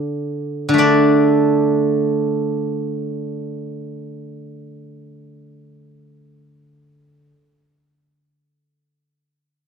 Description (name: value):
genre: chinese traditional, Chinese solo plucked strings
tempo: free time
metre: none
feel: none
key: unclear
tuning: A4 = 440 Hz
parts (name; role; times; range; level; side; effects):
- steel-string zither; solo; 0.0-7.3 s; D3 to D5; -17 LUFS; right 1 dB; none
room: little or no reverb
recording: dry, close 1970s-style studio recording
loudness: -15 LUFS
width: side -6 dB against mid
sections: 0.8-6.0 A section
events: none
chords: none